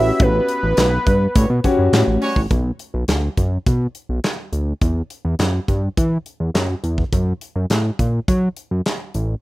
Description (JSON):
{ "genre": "early-eighties boogie funk", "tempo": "104 BPM", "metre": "4/4", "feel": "straight", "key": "B minor", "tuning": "A4 = 439 Hz", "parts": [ { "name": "fat analog lead", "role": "melody", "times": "0.0-1.9 s", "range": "B4 to E5", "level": "-20 LUFS", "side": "right 1 dB", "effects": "none" }, { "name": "warm concert grand piano", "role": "accompaniment", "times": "0.0-2.2 s", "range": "C#4 to C#5", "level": "-20 LUFS", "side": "left 3 dB", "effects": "plate reverb" }, { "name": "fat analog bass", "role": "bass", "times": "0.0-9.4 s", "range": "A1 to F#3", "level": "-18 LUFS", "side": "equal", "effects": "none" }, { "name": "modern studio drum kit", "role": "drums", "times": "0.2-9.3 s", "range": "handclaps, hi-hat, kick drum, snare drum", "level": "-20 LUFS", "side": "equal", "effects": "none" }, { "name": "congas", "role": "percussion", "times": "0.8-2.2 s", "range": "none", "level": "-29 LUFS", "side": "right 2 dB", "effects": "none" }, { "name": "clear horn section", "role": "second line", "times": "1.4-2.4 s", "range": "G3 to C#5", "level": "-24 LUFS", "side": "right 1 dB", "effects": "none" } ], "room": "light reverb", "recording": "rough home demo mix", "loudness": "-17 LUFS", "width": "side -18 dB against mid", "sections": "0.0-2.5 A section; 2.5-9.4 B section", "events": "band accent 0.2-2.5", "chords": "0.0 A13; 2.5 Bm; 4.8 Emadd9; 7.1 F#", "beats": "| 0.20 0.78 1.35 1.93 | 2.51 3.09 3.66 4.24 | 4.82 5.39 5.97 6.55 | 7.12 7.70 8.28 8.86" }